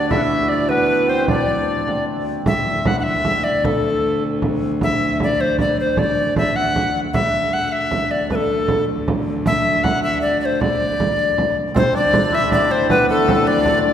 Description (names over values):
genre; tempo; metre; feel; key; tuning
medieval dance; 103 BPM (dotted quarters); 6/8; straight; D mixolydian; A4 = 440 Hz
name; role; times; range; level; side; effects
bright reedy tenor recorder; melody; 0.0-13.8 s; A4 to F#5; -19 LUFS; left 1 dB; none
edgy shawm; second line; 0.0-2.0, 11.8-13.9 s; A4 to F#5; -25 LUFS; left 2 dB; none
hammered dulcimer; second line; 0.0-5.2, 11.7-13.9 s; A3 to F#4; -25 LUFS; right 3 dB; none
rich viola da gamba; drone; 0.0-13.9 s; D2; -24 LUFS; left 1 dB; none
frame drum; percussion; 0.1-13.8 s; none; -22 LUFS; right 2 dB; none
room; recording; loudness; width
wet concert hall reverb, RT60 2.4 s; heard from further back in the room; -16 LUFS; side -9 dB against mid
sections
0.0-2.5 A section; 2.5-11.8 B section; 11.8-13.9 C section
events
speeding up 0.0-13.9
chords
none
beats
| 0.11 0.70 | 1.29 1.88 | 2.47 3.06 | 3.65 4.23 | 4.82 5.40 | 5.98 6.57 | 7.15 7.73 | 8.30 8.88 | 9.46 10.04 | 10.61 11.19 | 11.76 12.33 | 12.90 13.47